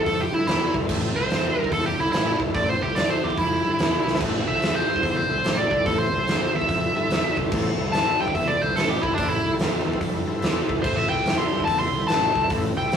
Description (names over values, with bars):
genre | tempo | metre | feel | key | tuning
blues rock power trio and southern rock | 145 BPM | 4/4 | swing 64% on 8ths | A minor | A4 = 439 Hz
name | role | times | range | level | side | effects
nasal lead guitar with a parked wah | second line | 0.0-13.0 s | D4 to C6 | -23 LUFS | equal | overdrive
bright tonewheel organ | sustained chords | 0.0-13.0 s | E4 to C5 | -31 LUFS | right 1 dB | slow rotary speaker, overdrive, chorus vibrato
fuzz fingered electric bass | bass | 0.0-13.0 s | A1 to G2 | -28 LUFS | equal | overdrive
huge arena drum kit | drums | 0.1-13.0 s | crash cymbal, hi-hat, kick drum, snare drum, splash cymbal | -25 LUFS | equal | none
room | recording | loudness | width
moderate studio reverb, RT60 0.5 s | rough rehearsal-room recording, studio reverb | -20 LUFS | side -8 dB against mid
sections
0.0-13.0 A section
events
lead electric guitar solo 0.0-13.0; drum fill 4.0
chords
0.0 Am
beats
0.06 0.48 | 0.89 1.31 1.72 2.13 | 2.55 2.96 3.37 3.79 | 4.20 4.62 5.03 5.44 | 5.86 6.27 6.69 7.10 | 7.52 7.93 8.35 8.76 | 9.18 9.59 10.01 10.43 | 10.84 11.26 11.67 12.09 | 12.50 12.92